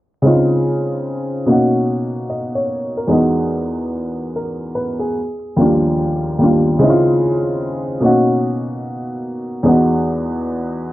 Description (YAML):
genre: hip hop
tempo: 73 BPM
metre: 4/4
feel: swing 64% on 16ths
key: Db major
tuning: A4 = 440 Hz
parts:
  - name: warm upright piano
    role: accompaniment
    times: 0.2-10.9 s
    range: Eb2 to Eb5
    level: -15 LUFS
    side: equal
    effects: cassette tape
room: wet small room reverb, RT60 0.6 s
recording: vinyl crackle, low-pass filter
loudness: -15 LUFS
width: side -16 dB against mid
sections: 0.2-10.9 A section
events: none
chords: 0.2 Dbmaj9; 1.5 Cbmaj9; 3.1 Emaj9; 5.2 Ebmaj9; 6.8 Dbmaj9; 8.0 Cbmaj9; 9.7 Emaj9